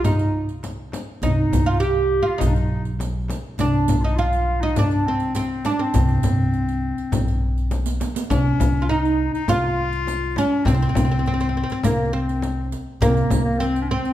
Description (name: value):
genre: Arabic maqam ensemble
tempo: 102 BPM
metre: 4/4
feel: straight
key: C maqam nahawand, C maqam bayati from 8.3 s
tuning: A4 = 439 Hz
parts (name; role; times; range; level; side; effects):
- oud; melody; 0.0-14.1 s; Bb3 to G4; -23 LUFS; right 3 dB; none
- clear clarinet; second line; 0.0-14.1 s; Bb3 to G4; -26 LUFS; left 5 dB; none
- upright bass; bass; 0.0-14.0 s; B1 to C2; -23 LUFS; equal; none
- darbuka; percussion; 0.0-8.3 s; none; -27 LUFS; equal; none
- frame drum; percussion; 0.0-13.4 s; none; -27 LUFS; left 3 dB; none
- riq; percussion; 0.0-14.1 s; none; -33 LUFS; right 6 dB; none
room: moderate recital hall reverb, RT60 1.5 s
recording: recorded in a church or concert hall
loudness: -18 LUFS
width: side -13 dB against mid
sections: 0.0-8.3 A section; 8.3-14.1 B section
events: drum fill 7.7-8.3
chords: none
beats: 0.05 0.64 | 1.23 1.82 2.41 3.00 | 3.59 4.18 4.77 5.36 | 5.95 6.54 7.13 7.72 | 8.31 8.90 9.48 10.07 | 10.66 11.25 11.84 12.43 | 13.02 13.60